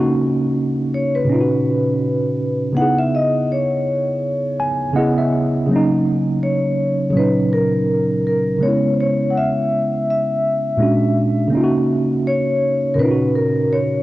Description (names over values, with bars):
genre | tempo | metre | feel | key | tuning
hip hop | 82 BPM | 4/4 | swing 57% on 16ths | C# dorian | A4 = 440 Hz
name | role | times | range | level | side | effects
mellow tine electric piano | accompaniment | 0.0-14.0 s | A#2 to G#5 | -17 LUFS | right 1 dB | medium stereo tremolo, cassette tape
vibraphone with medium mallets | melody | 0.9-14.0 s | A#4 to F#5 | -20 LUFS | left 1 dB | analog delay
room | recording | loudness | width
moderate plate reverb, RT60 3.6 s | worn, warbling old tape, cassette tape, warbly pitch drift | -16 LUFS | side -16 dB against mid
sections
0.0-5.7 A section; 5.7-14.0 B section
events
none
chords
0.0 D#m7/C#; 1.3 Bmaj9; 2.8 C#m9; 5.7 D#m7/C#; 7.1 Bmaj9/A#; 8.6 C#m7; 10.8 A#7alt; 11.5 D#m7/C#; 13.0 Bmaj9/A#